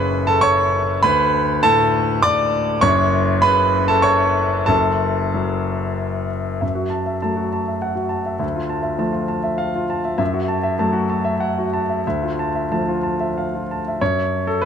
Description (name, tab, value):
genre	neoclassical minimalist piano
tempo	91-102 BPM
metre	3/4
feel	rubato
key	F# minor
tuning	A4 = 443 Hz
part	bright grand piano	solo	0.0-14.7 s	F#1 to D6	-17 LUFS	equal	none
room	moderate plate reverb, RT60 3.5 s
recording	dark, warm production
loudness	-17 LUFS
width	side -7 dB against mid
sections	0.0-6.6 A section; 6.6-14.0 B section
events	none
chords	0.0 F#m; 1.0 D5; 2.8 F#m; 6.6 F#m7; 8.4 Dmadd9; 10.2 F#m7; 12.0 Dmadd9; 14.0 F#5